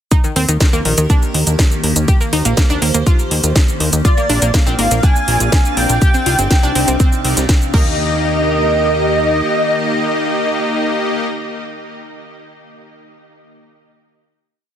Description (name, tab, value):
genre	progressive house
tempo	122 BPM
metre	4/4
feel	straight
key	Eb major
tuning	A4 = 437 Hz
part	evolving wavetable pad	sustained chords	0.1-11.3 s	C3 to C5	-23 LUFS	equal	phaser, built-in reverb, sidechain pumping
part	analog pluck	arpeggios	0.1-11.3 s	Eb3 to G4	-22 LUFS	equal	chorus, sidechain pumping, digital delay
part	electronic kick drum	drums	0.1-7.8 s	none	-12 LUFS	equal	none
part	house drum kit	drums	0.1-7.8 s	crash cymbal, hi-hat, shaker, snare drum	-20 LUFS	equal	overdrive, sidechain pumping on hats, sidechain pumping on perc, sidechain pumping on cymbals
part	plucky analog bass	bass	0.4-9.4 s	G1 to Eb2	-18 LUFS	equal	sidechain pumping
part	expressive synth lead	melody	4.0-11.3 s	D5 to Ab5	-20 LUFS	equal	ensemble chorus, digital delay
part	airy dreamy lead	second line	4.0-11.3 s	D5 to Ab5	-25 LUFS	equal	chorus, sidechain pumping, digital delay
part	drifting glass-harmonics texture	texture	4.5-8.0 s	F5	-31 LUFS	right 6 dB	none
part	soft supersaw	stabs	4.3-11.3 s	Bb3 to Eb5	-21 LUFS	left 1 dB	sidechain pumping, digital delay
room	little or no reverb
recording	dense, heavily limited modern master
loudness	-12 LUFS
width	side -10 dB against mid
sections	0.1-8.0 drop; 8.0-11.9 final hit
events	drop 0.1-8.0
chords	0.1 Eb; 4.0 Bbadd9; 6.0 Cmadd9; 7.7 Eb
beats	| 0.12 0.61 1.10 1.59 | 2.08 2.57 3.07 3.56 | 4.05 4.54 5.03 5.53 | 6.02 6.51 7.00 7.49 | 7.98 8.47 8.97 9.46 | 9.95 10.44 10.93